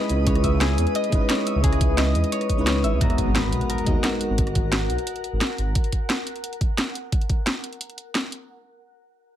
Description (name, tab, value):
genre	liquid drum and bass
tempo	175 BPM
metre	4/4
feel	straight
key	G# minor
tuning	A4 = 440 Hz
part	mellow FM electric piano	accompaniment	0.0-4.4 s	G#3 to A#5	-26 LUFS	equal	chorus, digital delay
part	glassy FM pad	sustained chords	0.0-7.1 s	A#4 to D#6	-31 LUFS	left 2 dB	ensemble chorus, built-in reverb
part	Celtic harp	arpeggios	0.0-6.5 s	F#4 to E5	-30 LUFS	left 2 dB	low-pass filter, digital delay
part	drum and bass drum kit	drums	0.0-8.4 s	hi-hat, rim click, shaker, snare drum	-26 LUFS	equal	overdrive
part	dark detuned saw bass	bass	0.1-5.7 s	G#1 to E2	-23 LUFS	equal	none
part	electronic kick drum	drums	0.3-7.4 s	none	-22 LUFS	equal	overdrive
part	impact	sound effects	3.0-4.4 s	none	-32 LUFS	right 1 dB	none
room	little or no reverb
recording	none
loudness	-20 LUFS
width	side -11 dB against mid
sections	0.0-3.0 A section; 3.0-8.5 B section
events	drop 0.0-3.0; kick drops out 2.7-3.0; impact 3.0-4.4; filter sweep on ambient pad 3.0-7.1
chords	0.0 C#m9; 3.0 G#m9